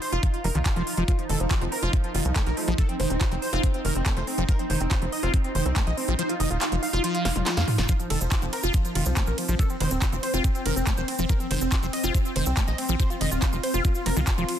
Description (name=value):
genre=psychedelic trance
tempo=141 BPM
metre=4/4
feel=straight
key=unclear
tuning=A4 = 440 Hz
part: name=wide unison lead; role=melody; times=0.0-14.5 s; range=F3 to F5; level=-31 LUFS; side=equal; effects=phaser, sidechain pumping, tape echo
part: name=swarming drone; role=sustained chords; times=0.0-14.6 s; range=C4 to Eb4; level=-33 LUFS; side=right 1 dB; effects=built-in reverb, sidechain pumping
part: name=big-room dance drum kit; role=drums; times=0.0-14.6 s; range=handclaps, hi-hat, ride cymbal, snare drum, toms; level=-31 LUFS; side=right 1 dB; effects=none
part: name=liquid acid bass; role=riff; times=0.1-14.4 s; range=Eb3 to F4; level=-31 LUFS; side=moving between left 4 dB and right 3 dB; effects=phaser, auto-pan, sidechain pumping, digital delay
part: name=tight sequencer bass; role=bass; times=0.1-14.5 s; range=Eb1 to F2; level=-26 LUFS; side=equal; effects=none
part: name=electronic kick drum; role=drums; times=0.2-14.4 s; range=none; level=-24 LUFS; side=equal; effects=none
part: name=resonant blip pluck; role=second line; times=1.6-4.2, 8.4-10.4 s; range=F3 to C4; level=-44 LUFS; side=equal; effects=none
part: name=cabasa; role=percussion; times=7.9-14.5 s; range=none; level=-37 LUFS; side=right 3 dB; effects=none
room=light reverb, digital ambience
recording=dense, heavily limited modern master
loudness=-22 LUFS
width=side -10 dB against mid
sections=0.0-14.6 A section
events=kick drops out 6.2-7.9; drum fill 7.3-7.9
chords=0.0 F5